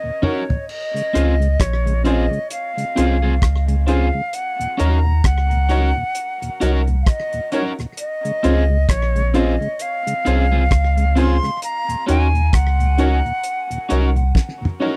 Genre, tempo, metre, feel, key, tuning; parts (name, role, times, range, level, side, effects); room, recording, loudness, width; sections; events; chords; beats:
roots reggae; 66 BPM; 4/4; swing 59% on 16ths; Db major; A4 = 441 Hz
silver concert flute; melody; 0.0-14.4 s; Db5 to C6; -26 LUFS; equal; dub echo
mellow tonewheel organ; accompaniment; 0.0-14.9 s; Eb2 to Gb4; -26 LUFS; equal; slow rotary speaker
electric guitar at the edge of break-up; accompaniment; 0.2-15.0 s; C4 to Bb4; -28 LUFS; equal; warbly pitch drift, dub echo
clear upright piano; stabs; 0.2-15.0 s; Db4 to Db5; -26 LUFS; equal
cloth-damped thuddy drum kit; drums; 0.2-14.9 s; crash cymbal, hi-hat, kick drum, rim click, snare drum, toms; -22 LUFS; equal
warm sub bass; bass; 1.2-14.3 s; Bb1 to Eb2; -19 LUFS; equal
little or no reverb; dry, close 1970s-style studio recording; -19 LUFS; mono
0.7-15.0 A section
drum fill 0.0-0.7, 14.3-15.0
0.0 Ebm7; 0.7 Dbmaj7; 4.3 Ebm7; 8.0 Dbmaj7; 11.6 Ebm7
| 0.68 1.59 2.51 3.42 | 4.33 5.24 6.15 7.06 | 7.97 8.88 9.80 10.71 | 11.62 12.53 13.44 14.35